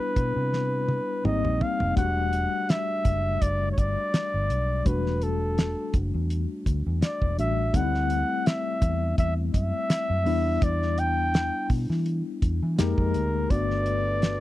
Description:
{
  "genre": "lush 1970s-style soul",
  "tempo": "83 BPM",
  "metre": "4/4",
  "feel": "swing 54% on 16ths",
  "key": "unclear",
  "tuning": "A4 = 440 Hz",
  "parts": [
    { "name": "breathy flugelhorn", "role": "melody", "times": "0.0-14.4 s", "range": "A4 to G5", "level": "-28 LUFS", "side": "equal", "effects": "none" },
    { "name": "tine electric piano", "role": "accompaniment", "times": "0.0-14.4 s", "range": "G3 to G4", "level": "-30 LUFS", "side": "left 4 dB", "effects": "medium stereo tremolo" },
    { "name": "vintage muted fingered electric bass", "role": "bass", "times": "0.2-14.4 s", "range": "E1 to E3", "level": "-27 LUFS", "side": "equal", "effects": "none" },
    { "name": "cloth-damped thuddy drum kit", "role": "drums", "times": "0.2-14.4 s", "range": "hi-hat, kick drum, snare drum, toms", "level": "-25 LUFS", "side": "equal", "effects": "none" },
    { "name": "mellow French horn section", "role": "sustained chords", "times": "13.5-14.4 s", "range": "G3 to B4", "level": "-38 LUFS", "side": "right 3 dB", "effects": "none" }
  ],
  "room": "small room ambience",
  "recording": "dry, close 1970s-style studio recording",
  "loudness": "-23 LUFS",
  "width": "side -15 dB against mid",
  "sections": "0.0-2.0 A section; 2.0-13.5 B section",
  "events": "drum fill 0.5-2.0",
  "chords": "0.0 Cmaj9; 1.3 Abmaj9; 2.0 Em11; 7.7 D9sus4; 10.3 Em7; 12.8 Fm11; 13.5 Gmaj9"
}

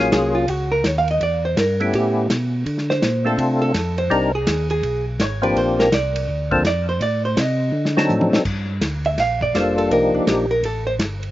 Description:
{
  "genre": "soul jazz organ trio",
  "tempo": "166 BPM",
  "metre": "4/4",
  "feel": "swing 64% on 8ths",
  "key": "unclear",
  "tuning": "A4 = 440 Hz",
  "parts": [
    { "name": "percussive tonewheel organ", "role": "melody", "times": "0.0-10.5 s", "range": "F3 to Bb4", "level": "-19 LUFS", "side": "left 2 dB", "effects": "chorus vibrato, slow rotary speaker" },
    { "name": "mellow tonewheel organ", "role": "bass", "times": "0.0-11.3 s", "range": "F1 to D3", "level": "-23 LUFS", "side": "equal", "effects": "overdrive, chorus vibrato, slow rotary speaker" },
    { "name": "vintage hollow-body jazz guitar", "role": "accompaniment", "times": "0.1-10.9 s", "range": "D4 to F5", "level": "-21 LUFS", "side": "right 2 dB", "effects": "slapback echo" },
    { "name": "warm soul drum kit", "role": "drums", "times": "0.1-11.3 s", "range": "crash cymbal, hi-hat, kick drum, ride cymbal, snare drum, toms", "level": "-25 LUFS", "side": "equal", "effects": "none" }
  ],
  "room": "little or no reverb",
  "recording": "recorded outdoors, with no room sound, nothing above 7.6 kHz",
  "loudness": "-17 LUFS",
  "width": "side -15 dB against mid",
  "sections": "0.0-8.5 A section; 8.5-11.3 A section",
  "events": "hollow-body jazz guitar solo 0.0-11.3; drum fill 7.7-8.5",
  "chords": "0.0 Ebm11; 1.2 Em; 1.9 A7; 2.7 Dm7; 4.1 Cm9; 4.8 Abdim7; 5.6 Bb; 7.0 Adim; 7.7 D7b9; 8.5 Gm7; 9.9 Cm11; 10.6 Gsus2"
}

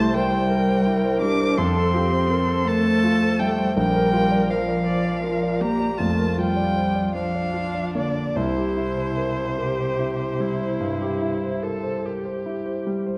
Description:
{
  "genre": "classical, slow romantic movement for piano quartet",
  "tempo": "48-56 BPM (dotted quarters)",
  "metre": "12/8",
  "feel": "rubato",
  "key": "unclear",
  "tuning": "A4 = 440 Hz",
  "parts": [
    { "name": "muted violin", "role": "melody", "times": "0.0-12.0 s", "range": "C5 to D6", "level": "-30 LUFS", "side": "equal", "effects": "none" },
    { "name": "muted cello", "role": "second line", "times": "0.0-12.0 s", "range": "C3 to D4", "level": "-27 LUFS", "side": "equal", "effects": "none" },
    { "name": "muted viola", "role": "accompaniment", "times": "0.0-13.2 s", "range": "D4 to D5", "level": "-31 LUFS", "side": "equal", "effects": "none" },
    { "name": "warm concert grand piano", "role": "accompaniment", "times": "0.0-13.2 s", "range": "Bb1 to D5", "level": "-27 LUFS", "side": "equal", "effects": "none" }
  ],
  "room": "wet recital hall reverb, RT60 1.3 s",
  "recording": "dark, warm production",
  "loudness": "-22 LUFS",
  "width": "mono",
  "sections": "0.0-13.2 A section",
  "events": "none",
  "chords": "0.0 C; 1.6 F; 3.8 Bb; 8.4 C"
}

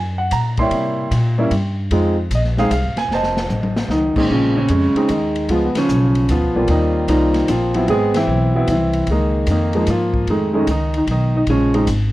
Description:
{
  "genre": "jazz piano trio",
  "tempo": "151 BPM",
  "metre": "3/4",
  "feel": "swing 66% on 8ths",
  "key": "Bb minor",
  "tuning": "A4 = 440 Hz",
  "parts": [
    { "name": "upright bass", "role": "bass", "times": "0.0-12.1 s", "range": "F1 to C3", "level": "-20 LUFS", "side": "equal", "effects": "none" },
    { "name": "warm grand piano", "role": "melody", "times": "0.2-11.9 s", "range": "Bb2 to C6", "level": "-17 LUFS", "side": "equal", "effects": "none" },
    { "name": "swinging big-band drum kit", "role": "drums", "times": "0.3-12.0 s", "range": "crash cymbal, hi-hat, kick drum, ride cymbal, snare drum, toms", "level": "-27 LUFS", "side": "left 1 dB", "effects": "none" }
  ],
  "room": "light reverb",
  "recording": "worn, warbling old tape, cassette tape, warbly pitch drift",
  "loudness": "-15 LUFS",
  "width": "side -16 dB against mid",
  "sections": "0.0-4.3 A section; 4.3-12.1 B section",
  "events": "drum fill 3.1-3.9; band accent 5.7, 8.1",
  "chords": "0.0 Ebm (rootless); 0.7 C7b9; 1.9 Fm7; 3.1 F7b13; 4.3 Bbm11; 5.5 Db7; 6.7 Eb69; 7.9 Abaug; 9.1 Db69; 10.3 F7alt; 11.5 Bbm7"
}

